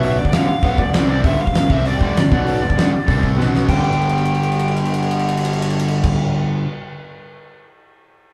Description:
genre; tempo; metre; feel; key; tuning
punk rock; 197 BPM; 4/4; straight; G major; A4 = 440 Hz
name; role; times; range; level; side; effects
biting lead guitar; melody; 0.0-6.1 s; D5 to G5; -26 LUFS; equal; overdrive
raw garage guitar; riff; 0.0-6.6 s; G2 to C4; -25 LUFS; equal; overdrive
sludgy distorted guitar; riff; 0.0-6.6 s; G2 to C4; -24 LUFS; equal; overdrive
fuzz picked electric bass; bass; 0.0-6.1 s; G1 to C2; -26 LUFS; equal; overdrive
big rock drum kit; drums; 0.0-7.6 s; crash cymbal, hi-hat, kick drum, ride cymbal, snare drum; -22 LUFS; equal; none
room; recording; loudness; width
wet large studio reverb, RT60 1.4 s; band playing live in one room; -17 LUFS; mono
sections
0.0-3.7 A section; 3.7-6.1 B section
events
drum fill 3.4-3.7, 3.8-6.1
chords
0.2 G; 0.9 C5; 1.2 G5; 1.7 C5; 2.0 G5; 2.3 B5; 2.6 G5; 3.1 C5; 3.4 B5; 3.7 G5

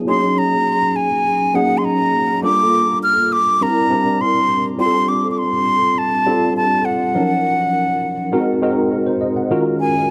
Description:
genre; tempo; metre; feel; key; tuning
pop; 102 BPM; 4/4; straight; unclear; A4 = 437 Hz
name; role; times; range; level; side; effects
mellow tine electric piano; accompaniment; 0.0-10.1 s; Eb3 to Gb5; -21 LUFS; equal; overdrive, ensemble chorus
breathy silver concert flute; melody; 0.1-10.1 s; Gb5 to F6; -19 LUFS; equal; none
room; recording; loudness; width
light reverb, small room ambience; none; -17 LUFS; mono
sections
0.0-9.5 A section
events
none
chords
0.1 Gb69; 2.4 Gm7; 3.6 C7; 4.8 F69; 7.1 Ebm9; 8.3 Ab7; 9.5 Ebm11

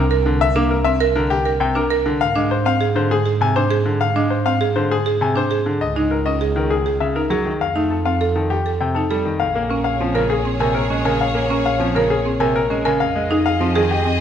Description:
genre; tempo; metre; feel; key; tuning
classical, minimalist pattern music; 100 BPM; 3/4; straight; F dorian, Bb minor from 9.4 s; A4 = 440 Hz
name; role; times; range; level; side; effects
clear baby grand piano; melody; 0.0-14.1 s; G4 to Ab5; -21 LUFS; left 6 dB; none
buzzing marimba with medium hard mallets; arpeggios; 0.0-14.2 s; C4 to Bb4; -21 LUFS; right 4 dB; none
warm double bass; bass; 0.0-14.2 s; Bb1 to Ab2; -23 LUFS; right 2 dB; none
bright grand piano; accompaniment; 0.3-14.0 s; C3 to Bb3; -24 LUFS; left 2 dB; none
rich studio string section; sustained chords; 9.4-14.2 s; Ab4 to Eb5; -25 LUFS; left 2 dB; none
room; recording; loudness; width
moderate scoring stage reverb, RT60 1.7 s; none; -16 LUFS; side -9 dB against mid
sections
0.0-9.4 A section; 9.4-14.2 B section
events
none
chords
0.0 C7(no3); 2.2 Ab6; 5.8 Dbsus2; 7.6 F7; 9.4 Bbm7; 13.0 Fm7

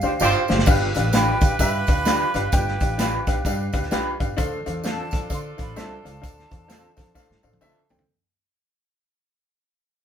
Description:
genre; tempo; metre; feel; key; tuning
uptempo 1960s-style soul; 130 BPM; 4/4; swing 61% on 8ths; G mixolydian; A4 = 442 Hz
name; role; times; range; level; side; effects
breathy hollow jazz flute; melody; 0.0-7.6 s; F5 to C6; -30 LUFS; right 1 dB; none
clear horn section; second line; 0.0-7.9 s; D4 to C5; -28 LUFS; right 3 dB; none
warm baby grand piano; accompaniment; 0.0-8.0 s; D4 to G5; -26 LUFS; left 3 dB; none
upright bass; bass; 0.0-8.0 s; F#1 to D3; -27 LUFS; equal; none
tambourine; percussion; 0.0-8.0 s; none; -37 LUFS; right 5 dB; none
electric guitar through a small old amp; stabs; 0.2-7.8 s; C4 to C5; -26 LUFS; right 2 dB; vibrato effect
vintage drum kit; drums; 0.5-8.1 s; crash cymbal, hi-hat, kick drum, snare drum, toms; -23 LUFS; equal; none
room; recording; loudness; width
moderate studio reverb, RT60 0.6 s; band playing live in one room; -19 LUFS; side -9 dB against mid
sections
0.7-8.1 A section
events
drum fill 0.0-0.7, 7.2-8.1; fade-out 0.7-8.1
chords
0.0 G7sus4; 0.7 G7; 4.4 Dm7

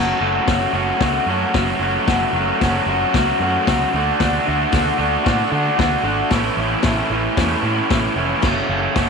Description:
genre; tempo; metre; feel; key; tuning
garage rock duo or trio; 113 BPM; 4/4; straight; F# minor; A4 = 440 Hz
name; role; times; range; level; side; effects
raw garage guitar; riff; 0.0-9.1 s; F#2 to F#4; -18 LUFS; equal; overdrive
fretless electric bass; bass; 0.0-9.1 s; E#1 to D3; -25 LUFS; right 2 dB; none
vintage drum kit; drums; 0.5-9.1 s; crash cymbal, hi-hat, kick drum, snare drum; -22 LUFS; left 3 dB; none
room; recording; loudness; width
light reverb, small room reverb; 1960s-style stereo; -16 LUFS; side -5 dB against mid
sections
0.0-9.1 A section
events
none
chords
0.0 F#m; 3.9 D; 6.3 A; 8.4 F#m

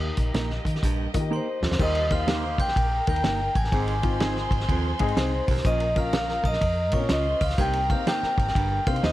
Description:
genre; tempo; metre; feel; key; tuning
uptempo 1960s-style soul; 124 BPM; 4/4; swing 65% on 8ths; Eb mixolydian; A4 = 440 Hz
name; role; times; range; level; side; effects
warm studio violin section; second line; 0.0-9.1 s; Bb3 to C6; -37 LUFS; right 2 dB; none
warm upright piano; accompaniment; 0.0-9.1 s; Bb3 to Eb5; -32 LUFS; left 7 dB; none
breathy baritone saxophone; riff; 0.0-8.8 s; Eb2 to C3; -34 LUFS; right 6 dB; none
vintage muted fingered electric bass; bass; 0.0-9.1 s; G1 to Eb3; -28 LUFS; equal; none
warm soul drum kit; drums; 0.2-9.1 s; crash cymbal, hi-hat, kick drum, ride cymbal, snare drum; -27 LUFS; equal; none
mellow electric guitar; stabs; 0.3-9.1 s; Bb3 to Db5; -30 LUFS; right 5 dB; none
glockenspiel with brass mallets; second line; 1.3-9.1 s; C6 to Ab6; -38 LUFS; right 2 dB; none
vibraphone with medium hard mallets; melody; 1.4-9.1 s; C5 to Ab5; -27 LUFS; equal; none
warm horn section; second line; 1.8-5.5 s; Bb2 to Bb4; -37 LUFS; right 2 dB; none
room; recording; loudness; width
small room ambience; dark, warm production; -22 LUFS; side -15 dB against mid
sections
0.0-1.8 A section; 1.8-9.1 B section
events
drum fill 1.3-1.8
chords
0.0 Eb; 3.7 Ab; 5.7 Bbm; 7.6 Cm7

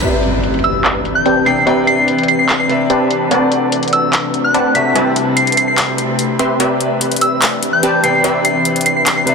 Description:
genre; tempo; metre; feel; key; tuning
future bass; 146 BPM; 4/4; half-time; C lydian; A4 = 439 Hz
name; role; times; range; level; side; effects
bright concert grand piano; accompaniment; 0.0-9.3 s; C3 to G5; -20 LUFS; left 2 dB; dub echo
ethereal airy pad; sustained chords; 0.0-9.3 s; C3 to B4; -22 LUFS; left 2 dB; ensemble chorus, built-in reverb
supersaw stab; riff; 0.0-9.3 s; C4 to C6; -17 LUFS; equal; low-pass filter, dub echo
trap drum kit; drums; 0.0-9.3 s; handclaps, hi-hat; -19 LUFS; left 1 dB; low-pass filter on hats, low-pass filter on snare
impact; sound effects; 0.0-1.7 s; none; -22 LUFS; equal; none
soft synth bell; melody; 0.6-9.2 s; E6 to C7; -16 LUFS; equal; chorus, ping-pong delay
room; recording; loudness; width
moderate huge ambient reverb, RT60 4.2 s; dense, heavily limited modern master; -12 LUFS; side -5 dB against mid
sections
0.0-9.3 A section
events
impact 0.0-1.7; filter sweep on drum 0.0-9.3; filter sweep on supersaw synth 0.0-9.3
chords
0.0 Cmaj9; 3.3 Bm7/C; 5.0 Am9/C; 6.6 Cmaj9

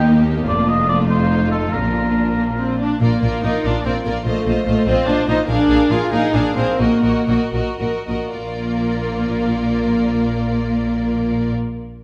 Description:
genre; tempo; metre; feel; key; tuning
classical, dramatic, fast romantic movement for symphony orchestra; 69-101 BPM (dotted quarters); 6/8; rubato; Bb major; A4 = 440 Hz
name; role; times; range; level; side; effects
warm symphonic violin section; melody; 0.0-11.5 s; F4 to F5; -32 LUFS; equal; none
rich symphonic violin section; second line; 0.0-11.5 s; D4 to C5; -27 LUFS; equal; none
warm oboe; second line; 0.0-2.8 s; A4 to Eb5; -24 LUFS; equal; none
rich studio viola section; accompaniment; 0.0-11.5 s; A3 to F4; -22 LUFS; equal; none
clear symphonic cello section; bass; 0.0-11.5 s; Eb2 to Bb2; -25 LUFS; equal; none
rich symphonic double bass section; bass; 0.0-11.5 s; F1 to Eb2; -26 LUFS; equal; none
timpani; percussion; 1.7-2.3 s; Bb2; -34 LUFS; equal; none
room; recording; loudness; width
wet recital hall reverb, RT60 1.5 s; dark, warm production; -18 LUFS; mono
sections
0.0-3.0 A section; 3.0-8.4 B section; 8.4-11.5 C section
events
slowing down 4.9-8.4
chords
0.5 Bb/F; 1.1 F7; 1.7 Bb; 4.3 F7/Bb; 5.5 Bb7; 6.8 Ebm/Bb

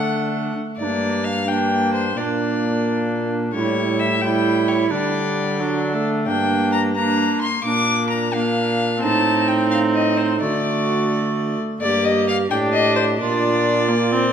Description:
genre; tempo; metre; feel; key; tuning
classical, renaissance-style consort dance; 87 BPM (dotted quarters); 6/8; straight; G minor; A4 = 440 Hz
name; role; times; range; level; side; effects
rich violin; melody; 0.0-14.3 s; C5 to D6; -22 LUFS; left 4 dB; none
tenor recorder; second line; 0.0-14.3 s; D4 to A4; -23 LUFS; right 6 dB; none
rich viola; accompaniment; 0.0-14.3 s; F#3 to D4; -23 LUFS; left 1 dB; none
mellow trombone; bass; 0.0-14.3 s; G2 to D3; -24 LUFS; right 2 dB; none
room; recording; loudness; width
wet recital hall reverb, RT60 1.8 s; recorded in a church or concert hall; -17 LUFS; side -8 dB against mid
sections
0.8-11.8 A section; 11.8-14.3 A section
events
none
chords
0.0 D; 0.8 Gm; 2.2 Bb; 3.5 A7; 4.9 Dsus4; 5.6 D; 6.3 Gm; 7.7 Bb; 9.0 Adim; 10.4 D; 11.8 Gm; 13.2 Bb

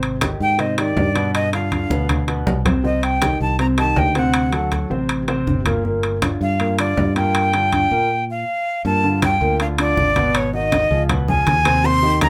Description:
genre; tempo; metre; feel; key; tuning
Afro-Cuban jazz; 160 BPM; 4/4; straight; G minor; A4 = 438 Hz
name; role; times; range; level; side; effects
warm concert grand piano; accompaniment; 0.0-12.3 s; Bb2 to C5; -25 LUFS; equal; none
fingered electric bass; bass; 0.0-12.3 s; G1 to Bb2; -24 LUFS; equal; none
congas; percussion; 0.0-12.3 s; none; -26 LUFS; equal; none
timbales; percussion; 0.0-12.3 s; none; -27 LUFS; equal; none
breathy bright jazz flute; melody; 0.4-12.3 s; C#5 to C6; -22 LUFS; equal; none
room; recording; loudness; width
moderate club reverb, RT60 0.5 s; none; -19 LUFS; mono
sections
0.0-8.8 A section; 8.8-12.3 B section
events
drum fill 1.9-2.8; stop 8.1-8.8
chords
0.0 Abmaj7; 1.3 G7; 2.8 Cmadd9; 4.3 D7; 5.8 Gm7; 8.8 Gm9; 10.3 Abm7; 11.1 C#9

